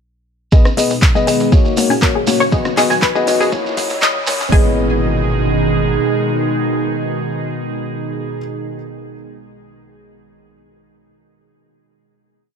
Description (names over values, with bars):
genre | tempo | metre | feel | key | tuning
progressive house | 120 BPM | 4/4 | straight | G# minor | A4 = 439 Hz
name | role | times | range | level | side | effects
evolving wavetable pad | sustained chords | 0.8-8.4 s | A#2 to G#4 | -20 LUFS | right 2 dB | chorus, built-in reverb, sidechain pumping
analog pluck | arpeggios | 0.5-4.8 s | G#4 to G#5 | -20 LUFS | equal | lush chorus, sidechain pumping, digital delay
felt-muted upright piano | stabs | 0.5-8.4 s | A#3 to D#5 | -19 LUFS | left 5 dB | sidechain pumping, digital delay
deep house drum kit | drums | 0.5-4.6 s | hi-hat, kick drum | -12 LUFS | equal | none
shekere | percussion | 0.5-4.5 s | none | -26 LUFS | right 5 dB | none
riser | sound effects | 2.7-4.5 s | none | -31 LUFS | right 2 dB | none
deep house drum kit | drums | 0.7-4.4 s | handclaps, hi-hat, rim click | -22 LUFS | equal | high-pass filter on snare, high-pass filter on hats
congas | percussion | 0.7-4.5 s | none | -27 LUFS | left 3 dB | sidechain pumping on perc
tight sequencer bass | bass | 0.8-6.0 s | F#1 to A#2 | -24 LUFS | equal | sidechain pumping, high-pass filter
room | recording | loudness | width
light reverb, digital ambience | dark, warm production, high-pass filter | -13 LUFS | side -7 dB against mid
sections
0.5-4.5 build; 4.5-8.5 final chord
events
build-up 0.5-4.5; filter sweep on synth pluck 0.5-4.5; filter sweep on ambient pad 0.5-4.5; filter sweep 0.5-4.5; riser 2.7-4.5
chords
0.5 G#m; 1.5 F#; 2.5 B; 3.5 A#dim; 4.5 G#m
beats
| 0.52 1.02 1.52 2.02 | 2.52 3.02 3.52 4.02 | 4.52 5.02 5.52 6.02 | 6.52 7.02 7.52 8.02